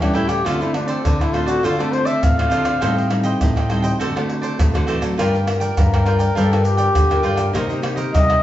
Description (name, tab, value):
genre	samba and choro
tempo	102 BPM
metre	4/4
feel	straight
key	unclear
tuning	A4 = 440 Hz
part	mellow flugelhorn	melody	0.0-8.4 s	C4 to F5	-20 LUFS	left 2 dB	none
part	cavaquinho	accompaniment	0.0-8.4 s	Eb4 to G5	-25 LUFS	right 3 dB	none
part	nylon-string guitar	accompaniment	0.0-8.4 s	A2 to Bb4	-23 LUFS	left 1 dB	none
part	nylon-string guitar	bass	0.0-8.4 s	G2 to F#3	-22 LUFS	equal	none
part	maracas, pandeiro, tamborim and surdo	percussion	0.0-8.4 s	none	-21 LUFS	equal	none
room	wet large studio reverb, RT60 0.9 s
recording	band playing live in one room, nothing above 7.9 kHz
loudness	-16 LUFS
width	side -13 dB against mid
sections	0.0-8.4 A section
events	flugelhorn solo 0.0-8.4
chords	0.5 Dm7; 2.8 Am7b5; 4.0 D7; 5.2 Gm7; 7.5 Cm7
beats	| 0.46 1.05 1.64 2.23 | 2.83 3.42 4.01 4.60 | 5.19 5.78 6.37 6.96 | 7.55 8.14